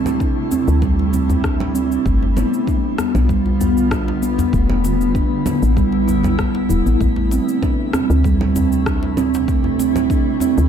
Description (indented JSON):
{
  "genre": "organic downtempo",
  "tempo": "97 BPM",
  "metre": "4/4",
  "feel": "swing 53% on 16ths",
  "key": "A minor",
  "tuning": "A4 = 441 Hz",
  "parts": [
    { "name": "granular cloud pad", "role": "sustained chords", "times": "0.0-10.7 s", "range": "C3 to F4", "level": "-24 LUFS", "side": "equal", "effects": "built-in reverb, sidechain pumping, shimmer reverb" },
    { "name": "steel tongue drum", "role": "arpeggios", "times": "0.0-10.7 s", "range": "G3 to E4", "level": "-18 LUFS", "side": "right 2 dB", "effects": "tape echo, shimmer reverb" },
    { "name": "woody FM bass", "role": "bass", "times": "0.0-10.7 s", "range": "D1 to D2", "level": "-19 LUFS", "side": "equal", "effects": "none" },
    { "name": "electronic congas, cabasa and rim click", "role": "drums", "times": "0.1-10.7 s", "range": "none", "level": "-27 LUFS", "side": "right 2 dB", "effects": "studio reverb" },
    { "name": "electronic kick drum", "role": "drums", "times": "0.2-10.2 s", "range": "none", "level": "-21 LUFS", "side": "equal", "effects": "studio reverb" },
    { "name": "djembe", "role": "percussion", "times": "0.5-10.5 s", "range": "none", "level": "-26 LUFS", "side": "left 2 dB", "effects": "none" }
  ],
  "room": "light reverb, digital ambience",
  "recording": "none",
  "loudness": "-15 LUFS",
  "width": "side -8 dB against mid",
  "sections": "0.0-7.0 A section; 7.0-10.7 B section",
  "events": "none",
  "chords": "0.0 Am7; 2.1 G7; 4.5 Em7; 7.0 Am7"
}